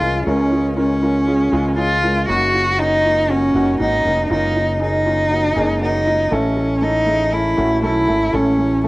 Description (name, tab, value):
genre	piano-driven pop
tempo	119 BPM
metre	4/4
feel	straight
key	unclear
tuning	A4 = 442 Hz
part	warm cello	melody	0.0-8.9 s	Db4 to Gb4	-16 LUFS	equal	cassette tape
part	warm upright piano	accompaniment	0.0-8.9 s	A2 to Bb4	-22 LUFS	equal	cassette tape
part	fretless electric bass	bass	0.0-8.9 s	F1 to Db2	-23 LUFS	equal	none
room	light reverb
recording	home recording on cassette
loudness	-15 LUFS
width	side -20 dB against mid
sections	0.0-8.9 A section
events	none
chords	0.0 Db; 2.3 Gb6; 6.3 A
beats	| 0.26 0.77 1.27 1.78 | 2.28 2.79 3.29 3.79 | 4.30 4.80 5.31 5.81 | 6.32 6.82 7.33 7.83 | 8.33 8.84